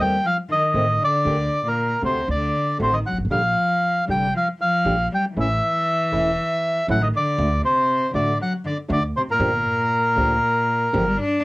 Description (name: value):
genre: tango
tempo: 118 BPM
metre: 4/4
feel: rubato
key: G minor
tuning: A4 = 439 Hz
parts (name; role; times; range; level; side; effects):
- bandoneon; melody; 0.0-11.2 s; Bb4 to G5; -20 LUFS; equal; cassette tape
- warm cello; second line; 0.0-11.4 s; Bb2 to D4; -25 LUFS; left 1 dB; none
- flamenco guitar; accompaniment; 0.0-11.0 s; D3 to G4; -26 LUFS; equal; none
- upright bass; bass; 0.0-11.2 s; E1 to Eb2; -26 LUFS; right 1 dB; none
room: light reverb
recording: home recording on cassette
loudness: -18 LUFS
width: side -22 dB against mid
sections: 0.0-11.4 A section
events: none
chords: 0.0 Adim; 1.3 Gm/D (rootless); 2.3 D7; 3.3 Bb6; 5.4 A; 7.4 D; 9.4 Gm7